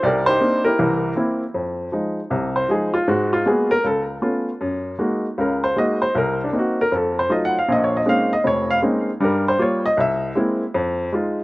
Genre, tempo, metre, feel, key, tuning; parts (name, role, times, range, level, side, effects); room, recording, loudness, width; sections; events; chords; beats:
solo jazz; 156 BPM; 4/4; swing 64% on 8ths; F minor; A4 = 441 Hz
warm upright piano; solo; 0.0-11.4 s; F1 to Gb5; -18 LUFS; equal; slapback echo
little or no reverb; recorded outdoors, with no room sound; -18 LUFS; side -20 dB against mid
0.0-1.5 A section; 1.5-11.4 B section
upright piano solo 1.5-11.4
0.0 Cm9; 0.8 C7; 1.5 Fm7; 3.1 Abm9; 3.8 Dbaug7; 4.6 Gb69; 6.1 Cm9b5; 6.9 F7b9; 7.7 Bbm11; 9.2 Gm7b5; 10.0 Caug7; 10.7 Fm7
| 0.02 0.40 0.78 1.17 | 1.55 1.93 2.31 2.69 | 3.08 3.46 3.84 4.23 | 4.61 4.99 5.38 5.76 | 6.14 6.53 6.91 7.30 | 7.68 8.06 8.45 8.83 | 9.21 9.60 9.98 10.37 | 10.75 11.13